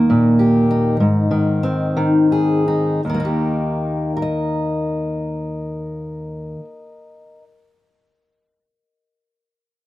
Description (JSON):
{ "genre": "folk, solo fingerstyle acoustic guitar", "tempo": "52-67 BPM (dotted quarters)", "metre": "6/8", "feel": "rubato", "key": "Eb major", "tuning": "A4 = 440 Hz", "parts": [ { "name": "fingerpicked steel-string acoustic guitar", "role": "solo", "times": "0.0-7.4 s", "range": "Eb2 to Eb5", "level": "-16 LUFS", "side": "equal", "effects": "none" } ], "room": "light reverb", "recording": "close, detailed microphones", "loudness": "-16 LUFS", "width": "side -16 dB against mid", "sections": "0.0-3.0 A section; 3.0-7.5 B section", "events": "slowing down 0.0-3.0", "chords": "0.0 Eb; 1.0 Ab; 3.0 Eb" }